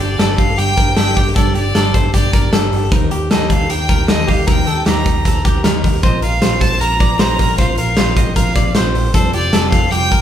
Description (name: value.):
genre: jangly indie pop.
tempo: 154 BPM.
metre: 4/4.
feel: straight.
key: G minor.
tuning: A4 = 439 Hz.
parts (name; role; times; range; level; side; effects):
bright violin; melody; 0.0-10.2 s; C5 to Bb5; -20 LUFS; equal; none.
fingerpicked steel-string acoustic guitar; accompaniment; 0.0-10.2 s; Eb3 to Bb4; -23 LUFS; right 2 dB; none.
direct-recorded clean electric guitar; arpeggios; 0.0-10.2 s; G4 to D5; -22 LUFS; left 3 dB; tube saturation.
vintage muted picked electric bass; bass; 0.0-10.2 s; F1 to Eb2; -19 LUFS; equal; none.
big rock drum kit; drums; 0.0-10.2 s; hi-hat, kick drum, snare drum; -15 LUFS; equal; none.
room: moderate large studio reverb, RT60 1.1 s.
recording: band playing live in one room.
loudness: -12 LUFS.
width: side -10 dB against mid.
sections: 0.0-10.2 A section.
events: none.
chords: 0.0 Gsus2; 2.9 Eb; 6.0 Bbsus2; 9.1 Fadd9.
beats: 0.19 0.58 0.97 | 1.36 1.75 2.14 2.53 | 2.92 3.31 3.70 4.08 | 4.47 4.86 5.25 5.64 | 6.03 6.42 6.81 7.20 | 7.59 7.98 8.37 8.75 | 9.14 9.53 9.92.